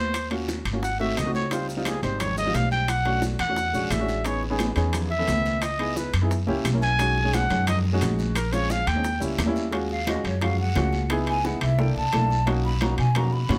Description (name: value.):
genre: Afro-Cuban jazz.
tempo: 175 BPM.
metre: 4/4.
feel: straight.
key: Eb minor from 9.7 s.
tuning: A4 = 441 Hz.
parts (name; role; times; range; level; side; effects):
dark trumpet; melody; 0.0-9.2 s; D#4 to G#5; -29 LUFS; equal; none.
dark baby grand piano; accompaniment; 0.0-13.6 s; D#3 to A#4; -31 LUFS; equal; none.
upright bass; bass; 0.0-13.6 s; G#1 to B2; -28 LUFS; equal; none.
bongos; percussion; 0.1-13.6 s; none; -38 LUFS; equal; none.
congas; percussion; 0.1-13.6 s; none; -36 LUFS; equal; none.
guiro; percussion; 0.1-13.6 s; none; -42 LUFS; equal; none.
maracas; percussion; 0.1-9.7 s; none; -45 LUFS; equal; none.
timbales; percussion; 0.1-13.6 s; none; -35 LUFS; equal; none.
breathy mellow jazz flute; second line; 9.9-13.6 s; Db5 to B5; -31 LUFS; equal; none.
room: moderate studio reverb, RT60 0.6 s.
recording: none.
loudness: -24 LUFS.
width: mono.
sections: 0.0-9.7 A section; 9.7-13.6 A section.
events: trumpet solo 0.0-9.7; flute solo 9.7-13.6.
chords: 0.1 D#m7; 0.8 G#7b9; 1.5 C#maj9#11; 2.9 Bm7; 3.6 E13; 4.3 Amaj9#11; 5.6 C#m9; 6.3 F#7b9; 7.0 B6; 8.4 A#m9; 9.0 D#7b9; 9.7 Ebm11; 11.1 Dbm9; 11.8 C13; 12.5 Bmaj9.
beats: | 0.14 0.49 0.83 1.17 | 1.51 1.86 2.20 2.54 | 2.89 3.23 3.57 3.91 | 4.26 4.60 4.94 5.28 | 5.62 5.97 6.31 6.65 | 6.99 7.34 7.68 8.02 | 8.36 8.71 9.05 9.39 | 9.73 10.08 10.42 10.76 | 11.10 11.45 11.79 12.13 | 12.47 12.82 13.16 13.50.